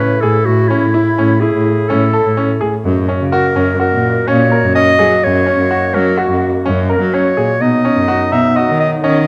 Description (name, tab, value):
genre	contemporary instrumental, chamber music in an uneven meter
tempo	126 BPM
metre	5/4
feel	straight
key	unclear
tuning	A4 = 440 Hz
part	bright clarinet	melody	0.0-9.3 s	E4 to E5	-17 LUFS	equal	none
part	mellow woodwind section	sustained chords	0.0-9.3 s	C#3 to F#4	-25 LUFS	equal	none
part	bright concert grand piano	arpeggios	0.0-9.2 s	C#4 to A#4	-20 LUFS	equal	none
part	clear cello	bass	0.0-9.2 s	F#2 to F#3	-18 LUFS	equal	none
room	moderate recital hall reverb, RT60 1.6 s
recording	none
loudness	-13 LUFS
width	mono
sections	0.0-9.3 A section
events	none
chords	0.0 A; 2.8 F#6; 7.6 Badd9